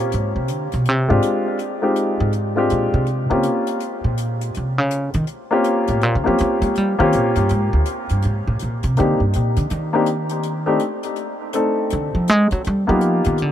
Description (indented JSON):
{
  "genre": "jazz piano trio",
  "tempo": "163 BPM",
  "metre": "4/4",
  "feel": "swing 63% on 8ths",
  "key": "unclear",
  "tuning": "A4 = 440 Hz",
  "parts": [
    { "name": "warm baby grand piano", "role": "melody", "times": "0.0-13.4 s", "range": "Ab3 to A4", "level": "-20 LUFS", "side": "left 1 dB", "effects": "ping-pong delay" },
    { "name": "upright bass", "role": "bass", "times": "0.0-13.5 s", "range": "D2 to Bb3", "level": "-19 LUFS", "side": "right 1 dB", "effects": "none" },
    { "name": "hi-hat", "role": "drums", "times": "0.1-13.5 s", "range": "none", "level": "-37 LUFS", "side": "left 5 dB", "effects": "none" }
  ],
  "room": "moderate huge ambient reverb, RT60 7.4 s",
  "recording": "dreamy mix soaked in reverb",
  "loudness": "-17 LUFS",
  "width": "side -10 dB against mid",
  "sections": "0.0-13.5 A section",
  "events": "upright bass solo 0.0-13.5",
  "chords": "0.1 Abmaj7#11; 1.6 Fm7; 2.3 Bb13; 3.1 Eb13 (rootless); 7.5 Bb7(no3); 9.0 Cm7; 10.4 Adim; 11.9 Ddim; 12.6 G7alt"
}